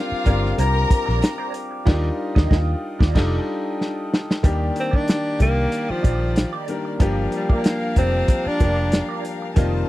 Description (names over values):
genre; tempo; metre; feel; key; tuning
lush 1970s-style soul; 93 BPM; 4/4; swing 54% on 16ths; unclear; A4 = 440 Hz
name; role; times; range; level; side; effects
warm studio violin section; second line; 0.0-9.9 s; Bb3 to Bb5; -29 LUFS; left 3 dB; none
bright concert grand piano; accompaniment; 0.0-9.9 s; Eb3 to Bb4; -26 LUFS; left 2 dB; none
glass harmonica; sustained chords; 0.0-4.4, 9.6-9.9 s; D4 to Eb6; -36 LUFS; right 1 dB; none
vintage muted fingered electric bass; bass; 0.1-9.8 s; F1 to Eb2; -22 LUFS; equal; none
electric guitar through a small old amp; riff; 0.3-9.8 s; Eb4 to Eb5; -32 LUFS; right 10 dB; wah
warm soul drum kit; drums; 0.3-9.7 s; crash cymbal, hi-hat, kick drum, snare drum; -18 LUFS; equal; none
breathy tenor saxophone; melody; 4.8-9.1 s; F3 to D4; -23 LUFS; equal; none
room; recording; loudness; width
little or no reverb; dry, close 1970s-style studio recording; -18 LUFS; side -16 dB against mid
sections
0.0-4.4 A section; 4.4-9.9 B section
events
band accent 1.9-4.4; drum fill 3.8-4.4; tenor saxophone solo 4.4-9.9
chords
0.0 Bb69; 1.9 Ebmaj9; 3.2 F13; 4.4 Ebmaj7; 7.0 Gm7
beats
0.58 1.23 | 1.87 2.51 3.15 3.79 | 4.44 5.08 5.72 6.36 | 7.01 7.65 8.29 8.93 | 9.57